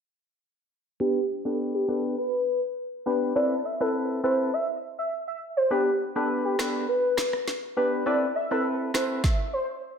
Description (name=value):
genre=dancehall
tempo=102 BPM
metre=4/4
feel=straight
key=unclear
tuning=A4 = 441 Hz
part: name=warm velvety synth lead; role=melody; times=1.0-9.7 s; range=G4 to E5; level=-26 LUFS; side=equal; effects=chorus, low-pass filter, tape echo
part: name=percussive organ stab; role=accompaniment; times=1.0-9.2 s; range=B3 to B4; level=-28 LUFS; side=left 1 dB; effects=chorus, low-pass filter
part: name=afro-pop drum kit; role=drums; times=6.6-9.4 s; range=kick drum, rim click, snare drum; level=-28 LUFS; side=right 1 dB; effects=none
room=wet plate reverb, RT60 1.3 s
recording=dreamy mix soaked in reverb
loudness=-24 LUFS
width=side -6 dB against mid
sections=1.0-10.0 A section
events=filter sweep 1.0-10.0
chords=1.0 G; 3.4 Amadd9; 5.7 G; 8.1 Amadd9